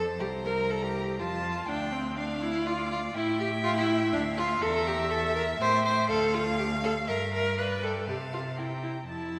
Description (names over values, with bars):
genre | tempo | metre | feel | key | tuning
quick classical-period movement for string quartet | 122 BPM | 3/4 | straight | unclear | A4 = 440 Hz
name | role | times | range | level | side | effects
rich violin | melody | 0.0-9.4 s | F5 to Bb5 | -41 LUFS | equal | none
warm violin | second line | 0.0-9.4 s | C5 to A5 | -37 LUFS | equal | none
rich viola | accompaniment | 0.0-9.4 s | C4 to C5 | -31 LUFS | equal | none
rich cello | bass | 0.0-9.4 s | C2 to C3 | -36 LUFS | equal | none
room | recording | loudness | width
wet scoring stage reverb, RT60 2.0 s | none | -29 LUFS | mono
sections
0.0-9.4 A section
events
none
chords
0.2 Gmadd11/C; 1.2 F; 1.7 Dm; 3.2 A5; 4.1 Dm; 4.6 Gm69/E; 5.6 Am7; 6.1 Dm; 7.1 Gm7; 8.1 F/C; 8.6 C7